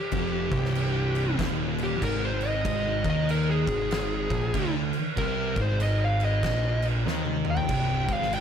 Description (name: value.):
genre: stoner and doom metal.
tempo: 95 BPM.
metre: 4/4.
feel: swing 62% on 8ths.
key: unclear.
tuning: A4 = 438 Hz.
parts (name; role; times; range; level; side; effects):
fuzz lead guitar; melody; 0.0-8.4 s; G4 to G5; -30 LUFS; left 1 dB; distortion, slapback echo.
thick fuzz guitar; riff; 0.1-8.4 s; C2 to Eb3; -31 LUFS; left 8 dB; distortion.
thick fuzz guitar; riff; 0.1-8.4 s; C2 to Eb3; -30 LUFS; right 7 dB; distortion.
fuzz picked electric bass; bass; 0.1-8.4 s; C1 to Eb2; -32 LUFS; equal; overdrive.
oversized low-tuned drum kit; drums; 0.1-8.4 s; crash cymbal, kick drum, snare drum, toms; -31 LUFS; right 1 dB; none.
room: light reverb, studio reverb.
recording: none.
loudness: -24 LUFS.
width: side -8 dB against mid.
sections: 0.0-8.4 A section.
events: lead electric guitar solo 0.0-8.4; drum fill 7.1-7.7.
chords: 0.0 Cm; 2.6 Ab5; 7.7 C5.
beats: | 0.12 0.75 1.38 2.01 | 2.65 3.28 3.91 4.54 | 5.17 5.80 6.44 7.07 | 7.70 8.33.